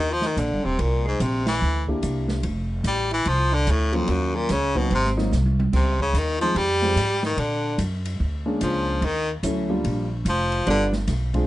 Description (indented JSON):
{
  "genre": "jazz, small-group swing and bop",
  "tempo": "146 BPM",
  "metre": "4/4",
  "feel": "swing 64% on 8ths",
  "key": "C minor",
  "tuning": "A4 = 441 Hz",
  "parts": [
    { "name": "edgy baritone saxophone", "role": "melody", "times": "0.0-10.8 s", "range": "F2 to G3", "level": "-24 LUFS", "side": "left 2 dB", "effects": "none" },
    { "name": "mellow tenor saxophone", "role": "second line", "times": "0.0-10.9 s", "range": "F3 to G4", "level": "-29 LUFS", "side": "right 2 dB", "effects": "none" },
    { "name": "upright bass", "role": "bass", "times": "0.0-11.5 s", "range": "Eb1 to Bb2", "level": "-24 LUFS", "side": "equal", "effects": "none" },
    { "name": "open jazz drum kit", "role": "drums", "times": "0.2-11.4 s", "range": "crash cymbal, hi-hat, kick drum, ride cymbal, snare drum, toms", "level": "-32 LUFS", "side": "right 1 dB", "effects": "none" },
    { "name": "warm grand piano", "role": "accompaniment", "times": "1.9-11.5 s", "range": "F3 to G4", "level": "-26 LUFS", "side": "equal", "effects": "none" }
  ],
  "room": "light reverb",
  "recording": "nothing above 10.4 kHz",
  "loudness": "-20 LUFS",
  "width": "side -16 dB against mid",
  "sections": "0.0-11.5 A section",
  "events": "band accent 1.4; drum fill 5.3-5.7",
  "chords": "0.0 Cm9; 0.8 C7; 2.4 F6; 4.1 Ebm7; 4.9 Ab7; 5.7 Dbmaj9; 7.4 Bb7alt; 9.0 Ebmaj9; 10.7 G7"
}